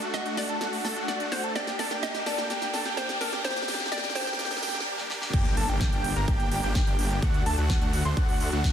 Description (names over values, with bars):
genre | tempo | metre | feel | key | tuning
EDM, festival progressive house | 127 BPM | 4/4 | straight | G harmonic minor | A4 = 441 Hz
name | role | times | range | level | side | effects
hollow square pluck | melody | 0.0-4.4 s | Bb4 to Eb5 | -34 LUFS | equal | chorus, vintage 12-bit sampler grit, ping-pong delay
wide unison lead | arpeggios | 0.0-8.7 s | F#5 to C6 | -32 LUFS | equal | analog chorus, sidechain pumping, ping-pong delay
supersaw chords | riff | 0.0-8.7 s | A3 to C5 | -32 LUFS | right 1 dB | sidechain pumping, ping-pong delay
big-room dance drum kit | drums | 0.0-8.7 s | crash cymbal, hi-hat, snare drum | -34 LUFS | right 1 dB | studio ambience
riser, swell and impact | sound effects | 0.1-7.2 s | none | -37 LUFS | equal | none
detuned saw bass | bass | 5.3-8.7 s | G1 to D2 | -29 LUFS | equal | sidechain pumping
electronic kick drum | drums | 5.3-8.7 s | none | -26 LUFS | equal | studio ambience
room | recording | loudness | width
moderate digital room reverb, RT60 0.9 s | dense, heavily limited modern master, high-pass filter | -25 LUFS | side -9 dB against mid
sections
0.0-5.3 A section; 5.3-8.7 B section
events
build-up 0.0-5.3; drum fill 0.0-4.9, 5.0-5.3; filter sweep on supersaw synth 0.0-5.3; filter sweep on analog synth lead 0.0-5.3; filter sweep 0.0-5.3; riser 0.1-4.9; swell 4.4-5.3; drop 5.3-8.7; impact 5.3-7.2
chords
0.0 D; 1.6 Bbmaj13; 3.4 C5; 5.3 Gm; 7.2 D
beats
0.14 0.61 1.08 | 1.55 2.03 2.50 2.97 | 3.44 3.92 4.39 4.86 | 5.33 5.81 6.28 6.75 | 7.22 7.70 8.17 8.64